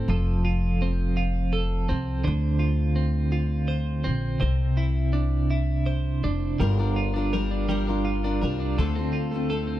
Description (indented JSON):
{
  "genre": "six-eight pop ballad",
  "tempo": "55 BPM (dotted quarters)",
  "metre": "6/8",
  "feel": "straight",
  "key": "unclear",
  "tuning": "A4 = 441 Hz",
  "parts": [
    { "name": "twelve-string electric guitar", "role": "accompaniment", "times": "0.0-9.8 s", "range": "C3 to C5", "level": "-26 LUFS", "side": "right 2 dB", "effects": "tremolo" },
    { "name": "upright bass", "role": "bass", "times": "0.0-9.8 s", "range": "F1 to D2", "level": "-25 LUFS", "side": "equal", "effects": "none" },
    { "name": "picked steel-string acoustic guitar", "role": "arpeggios", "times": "6.6-9.8 s", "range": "D3 to Bb4", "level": "-29 LUFS", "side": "left 8 dB", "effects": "none" }
  ],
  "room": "light reverb, studio reverb",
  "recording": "dark, warm production",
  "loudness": "-22 LUFS",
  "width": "side -14 dB against mid",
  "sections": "0.0-6.6 A section; 6.6-9.8 B section",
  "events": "none",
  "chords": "0.1 F; 2.3 Dm7; 4.4 Cadd9; 6.6 Gm7; 8.8 Dm7",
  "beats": "| 0.10 1.18 | 2.26 3.35 | 4.42 5.52 | 6.61 7.70 | 8.79"
}